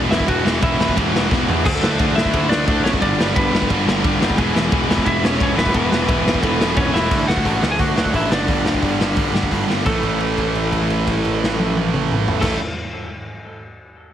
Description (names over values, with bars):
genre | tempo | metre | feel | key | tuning
punk rock | 175 BPM | 4/4 | straight | unclear | A4 = 441 Hz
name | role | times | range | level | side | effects
cranked stack guitar | riff | 0.0-12.6 s | E2 to D4 | -25 LUFS | left 12 dB | overdrive
scooped high-gain guitar | riff | 0.0-7.1 s | E2 to D4 | -26 LUFS | left 3 dB | distortion
tight distorted guitar | riff | 0.0-12.6 s | E2 to D4 | -23 LUFS | right 12 dB | distortion
fuzz picked electric bass | bass | 0.0-12.6 s | E1 to E2 | -23 LUFS | equal | overdrive
lightly driven lead guitar | melody | 0.1-12.6 s | G#3 to G#5 | -24 LUFS | equal | tape echo
raw garage drum kit | drums | 0.1-12.5 s | crash cymbal, hi-hat, kick drum, ride cymbal, snare drum, toms | -21 LUFS | equal | none
room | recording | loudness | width
light reverb | heavily compressed radio sound | -16 LUFS | side -10 dB against mid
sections
0.0-7.1 A section; 7.1-9.9 B section; 9.9-12.6 C section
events
drum fill 1.3-1.7, 6.9, 9.7; held note 9.9-12.4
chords
0.0 E5; 1.7 D5; 3.0 G; 4.4 E; 7.1 D; 8.5 G5; 9.9 A5